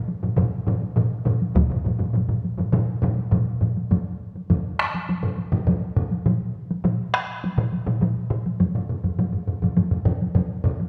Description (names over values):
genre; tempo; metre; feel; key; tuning
japanese traditional, taiko drum ensemble; 102 BPM; 4/4; straight; none; none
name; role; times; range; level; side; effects
taiko ensemble; percussion; 0.1-10.9 s; none; -28 LUFS; equal; none
taiko ensemble; percussion; 0.2-10.8 s; none; -27 LUFS; equal; none
taiko ensemble; percussion; 0.2-8.4 s; none; -27 LUFS; equal; none
taiko ensemble; percussion; 1.6-1.7 s; none; -27 LUFS; equal; none
room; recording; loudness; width
wet recital hall reverb, RT60 1.7 s; dark, warm production, faint mains hum; -23 LUFS; mono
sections
0.0-3.9 A section; 3.9-10.9 B section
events
none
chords
none